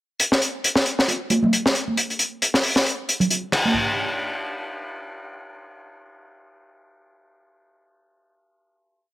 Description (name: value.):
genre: breakbeat.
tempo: 135 BPM.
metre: 4/4.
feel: swing 57% on 16ths.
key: none.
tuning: none.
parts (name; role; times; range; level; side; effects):
crunchy breakbeat drum kit; drums; 0.2-3.6 s; crash cymbal, hi-hat, kick drum, snare drum; -20 LUFS; equal; high-pass filter on kick, high-pass filter on hats, high-pass filter on cymbals, high-pass filter on snare, high-pass filter on room.
bongos and congas; percussion; 1.1-3.7 s; none; -24 LUFS; right 2 dB; none.
room: light reverb, small room reverb.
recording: none.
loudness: -19 LUFS.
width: side -16 dB against mid.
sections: 0.2-3.8 breakdown; 3.8-7.3 final hit.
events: none.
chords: none.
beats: | 0.19 0.64 1.08 1.53 | 1.97 2.42 2.86 3.31.